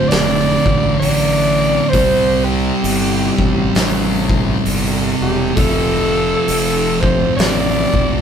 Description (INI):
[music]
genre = stoner and doom metal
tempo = 66 BPM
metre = 4/4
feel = swing 60% on 8ths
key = unclear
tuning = A4 = 437 Hz
[part]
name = breathy alto saxophone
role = melody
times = 0.0-8.2 s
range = G4 to D5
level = -18 LUFS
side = left 1 dB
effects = none
[part]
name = fuzz guitar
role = riff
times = 0.0-8.2 s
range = D2 to C4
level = -22 LUFS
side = left 9 dB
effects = distortion
[part]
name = thick fuzz guitar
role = riff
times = 0.0-8.2 s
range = D2 to C4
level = -19 LUFS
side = right 9 dB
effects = distortion
[part]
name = fuzz fingered electric bass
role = bass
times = 0.1-8.2 s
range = E1 to C2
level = -22 LUFS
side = left 1 dB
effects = overdrive
[part]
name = oversized low-tuned drum kit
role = drums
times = 0.1-8.1 s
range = hi-hat, kick drum, snare drum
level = -20 LUFS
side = equal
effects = none
[sound]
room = light reverb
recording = band playing live in one room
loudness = -13 LUFS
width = side -8 dB against mid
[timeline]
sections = 0.0-8.2 A section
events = none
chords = 0.0 Dm; 1.9 C5; 5.6 F